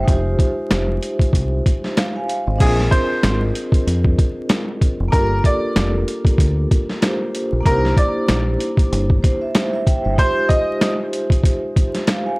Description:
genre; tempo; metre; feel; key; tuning
hip hop, boom-bap hip-hop; 95 BPM; 4/4; swing 58% on 16ths; F dorian; A4 = 439 Hz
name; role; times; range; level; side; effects
vibraphone with soft mallets; accompaniment; 0.0-12.4 s; Ab3 to Ab5; -22 LUFS; equal; none
deep dub fingered electric bass; bass; 0.0-10.2 s; F1 to F2; -19 LUFS; equal; tube saturation
boom bap sampler-style drum kit; drums; 0.1-12.3 s; crash cymbal, hi-hat, kick drum, snare drum; -17 LUFS; equal; none
bright upright piano; melody; 2.6-11.0 s; Ab4 to Eb5; -21 LUFS; equal; tape echo
room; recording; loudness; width
little or no reverb; dry, gritty hardware recording, transformer saturation, vinyl crackle; -15 LUFS; side -25 dB against mid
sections
0.0-2.6 A section; 2.6-12.4 B section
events
none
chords
0.1 Fm7; 2.6 Bb7; 5.1 Gm7; 7.7 C7; 10.2 Fm7

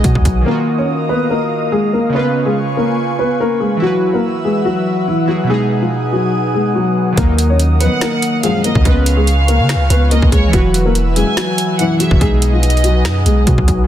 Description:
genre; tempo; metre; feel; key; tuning
hip hop, trap; 143 BPM; 4/4; half-time; Eb minor; A4 = 440 Hz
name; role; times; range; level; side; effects
dark concert grand piano; melody; 0.0-13.9 s; E3 to Db5; -17 LUFS; left 2 dB; none
glassy digital keys; accompaniment; 0.0-13.9 s; B2 to Cb5; -20 LUFS; right 3 dB; chorus
airy breathy pad; sustained chords; 0.0-13.9 s; Bb4 to E6; -23 LUFS; equal; chorus
long sustained 808-style bass; bass; 0.0-0.5, 7.2-13.9 s; E1 to Db3; -13 LUFS; equal; none
trap drum kit; drums; 0.0-0.4, 7.2-13.8 s; finger snaps, hi-hat, kick drum, snare drum; -16 LUFS; equal; soft clipping on snare
warm studio violin section; second line; 7.8-13.4 s; Db5 to Ab5; -22 LUFS; right 1 dB; ping-pong delay
dark brass ensemble; stabs; 7.8-12.2 s; Bb1 to F3; -20 LUFS; left 5 dB; none
room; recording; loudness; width
light reverb; dense, heavily limited modern master; -12 LUFS; side -11 dB against mid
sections
0.5-13.9 A section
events
none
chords
0.5 Ebmadd9; 2.1 Db7; 3.8 Esus2; 5.5 B6; 7.2 Ebmadd9; 8.9 Db7; 10.5 Esus2; 12.2 B6

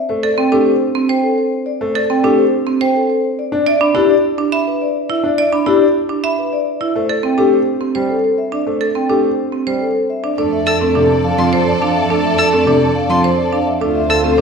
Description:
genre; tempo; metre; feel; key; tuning
classical, minimalist pattern music; 105 BPM; 3/4; straight; F major from 10.4 s; A4 = 441 Hz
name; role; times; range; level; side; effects
vibraphone with soft mallets; melody; 0.0-14.4 s; G4 to B5; -17 LUFS; left 5 dB; none
warm concert grand piano; accompaniment; 0.1-14.4 s; C3 to D4; -21 LUFS; equal; none
marimba with hard mallets; arpeggios; 0.2-14.4 s; C4 to E5; -17 LUFS; right 6 dB; none
warm soprano saxophone; second line; 10.4-14.3 s; F4 to A4; -24 LUFS; right 3 dB; none
rich studio violin section; sustained chords; 10.4-14.4 s; F4 to D5; -22 LUFS; left 2 dB; none
rich studio double bass section; bass; 10.4-14.4 s; D2 to F2; -22 LUFS; right 3 dB; none
warm violin; arpeggios; 10.7-14.2 s; C6 to E6; -21 LUFS; left 3 dB; none
room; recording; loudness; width
wet recital hall reverb, RT60 1.4 s; recorded in a church or concert hall; -13 LUFS; side -5 dB against mid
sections
0.0-10.4 A section; 10.4-14.4 B section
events
none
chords
0.1 Amadd11; 3.5 G (rootless); 7.0 Am7; 10.4 F6; 13.8 Dm7

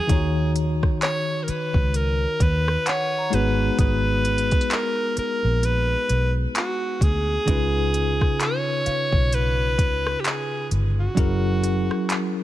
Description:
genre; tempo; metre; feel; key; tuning
contemporary R&B; 65 BPM; 4/4; swing 58% on 16ths; G# minor; A4 = 440 Hz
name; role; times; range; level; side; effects
breathy alto saxophone; melody; 0.0-12.3 s; F#4 to C#5; -25 LUFS; equal; digital delay
bell-like tine electric piano; accompaniment; 0.0-12.4 s; C#3 to C#5; -27 LUFS; left 1 dB; medium stereo tremolo
vintage muted fingered electric bass; bass; 0.1-11.9 s; F#1 to D#2; -23 LUFS; equal; none
smooth R&B drum kit; drums; 0.1-12.3 s; handclaps, hi-hat, kick drum, rim click; -23 LUFS; equal; vintage 12-bit sampler grit
celesta; texture; 0.1-11.0 s; E#5 to D#6; -36 LUFS; right 3 dB; digital delay
room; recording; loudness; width
digital ambience; none; -20 LUFS; side -14 dB against mid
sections
0.0-12.4 A section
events
none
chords
0.1 D#m7; 3.3 G#m9; 7.5 C#7; 11.2 F#7

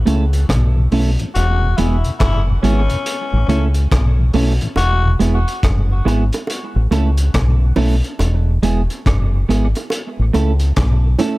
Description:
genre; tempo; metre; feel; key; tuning
dub reggae; 70 BPM; 4/4; swing 63% on 16ths; unclear; A4 = 440 Hz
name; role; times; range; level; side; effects
deep dub fingered electric bass; bass; 0.0-11.1 s; E1 to C#2; -15 LUFS; equal; none
clean electric guitar; accompaniment; 0.1-11.4 s; G#3 to A4; -21 LUFS; right 4 dB; wide subtle chorus, dub echo
mellow tonewheel organ; accompaniment; 0.1-5.1 s; E2 to E4; -25 LUFS; left 1 dB; slow rotary speaker
crunchy breakbeat drum kit; drums; 0.1-11.4 s; hi-hat, kick drum, rim click; -21 LUFS; equal; none
raspy tenor saxophone; second line; 1.3-5.1 s; C#4 to F#4; -24 LUFS; left 4 dB; dub echo
bongos; percussion; 4.8-11.4 s; none; -26 LUFS; right 2 dB; dub echo
room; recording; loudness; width
small room ambience; none; -14 LUFS; side -20 dB against mid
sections
0.0-11.4 A section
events
break 0.0-4.8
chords
0.0 A; 1.3 E; 3.1 A; 4.8 E; 6.5 A; 8.2 E; 9.9 A

